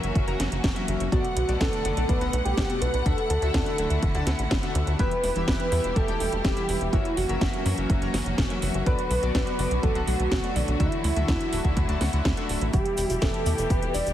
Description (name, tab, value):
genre	italo disco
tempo	124 BPM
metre	4/4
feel	straight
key	E dorian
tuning	A4 = 442 Hz
part	wide unison lead	melody	0.0-14.1 s	D4 to D5	-29 LUFS	right 1 dB	cassette tape, digital delay
part	clear symphonic string section	sustained chords	0.0-14.1 s	B2 to F#5	-32 LUFS	equal	low-pass filter
part	chorused polysynth	stabs	0.0-14.0 s	B2 to A#5	-33 LUFS	left 3 dB	none
part	tight sequencer bass	bass	0.0-14.1 s	D1 to F#2	-27 LUFS	equal	none
part	house drum kit	drums	0.0-14.1 s	cabasa, hi-hat, snare drum	-32 LUFS	right 1 dB	high-pass filter on hats, studio ambience, high-pass filter on snare, high-pass filter on cymbals, high-pass filter on perc
part	electronic kick drum	drums	0.2-13.8 s	none	-26 LUFS	equal	studio ambience
room	light reverb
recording	heavily compressed radio sound, multiband compression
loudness	-22 LUFS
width	side -12 dB against mid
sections	0.0-12.7 A section; 12.7-14.1 B section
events	filter sweep on analog polysynth 12.7-14.1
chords	0.0 F#7; 1.1 Bm7; 3.1 Dadd9; 5.0 Em; 6.9 F#7; 8.9 Bm7; 10.8 Dadd9; 12.7 Em